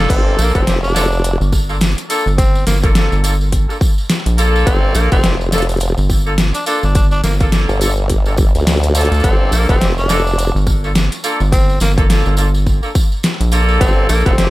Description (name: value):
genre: glitch hop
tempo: 105 BPM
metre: 4/4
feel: swing 58% on 16ths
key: G minor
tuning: A4 = 440 Hz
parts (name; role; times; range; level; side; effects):
- warm horn section; stabs; 0.0-14.5 s; Bb3 to A4; -21 LUFS; equal; sidechain pumping, dub echo
- rubbery square bass; bass; 0.0-14.2 s; G1 to D2; -14 LUFS; equal; none
- raspy tenor saxophone; melody; 0.1-14.5 s; Bb3 to D4; -23 LUFS; equal; dub echo
- formant-sweep wobble bass; bass; 0.1-14.5 s; F1 to D2; -16 LUFS; equal; chorus
- dubstep drum kit; drums; 0.1-14.5 s; crash cymbal, hi-hat, rim click, snare drum; -19 LUFS; left 1 dB; overdrive
- electronic kick drum; drums; 0.1-14.4 s; none; -15 LUFS; equal; overdrive
- tambourine; percussion; 0.1-14.5 s; none; -27 LUFS; right 2 dB; none
room: digital ambience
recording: none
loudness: -12 LUFS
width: side -18 dB against mid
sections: 0.0-14.5 A section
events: none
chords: 0.0 Gm7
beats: | 0.10 0.67 1.24 1.81 | 2.38 2.95 3.52 4.10 | 4.67 5.24 5.81 6.38 | 6.95 7.52 8.10 8.67 | 9.24 9.81 10.38 10.95 | 11.52 12.10 12.67 13.24 | 13.81 14.38